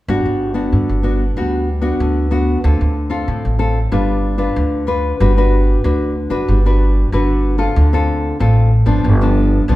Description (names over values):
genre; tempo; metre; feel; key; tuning
samba and choro; 94 BPM; 4/4; straight; G major; A4 = 440 Hz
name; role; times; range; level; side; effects
nylon-string guitar; accompaniment; 0.1-9.8 s; G2 to B4; -17 LUFS; left 1 dB; none
upright bass; bass; 0.1-9.8 s; G1 to D3; -15 LUFS; equal; none
room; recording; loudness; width
moderate large studio reverb, RT60 1.3 s; band playing live in one room; -13 LUFS; side -16 dB against mid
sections
0.1-5.2 A section; 5.2-9.8 B section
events
none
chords
0.1 Gmaj7; 2.6 Dm7; 3.9 G7; 5.2 Gmaj7; 7.8 Dm7; 9.0 G7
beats
| 0.09 0.73 1.37 2.01 | 2.65 3.29 3.92 4.57 | 5.21 5.84 6.48 7.12 | 7.76 8.40 9.04 9.68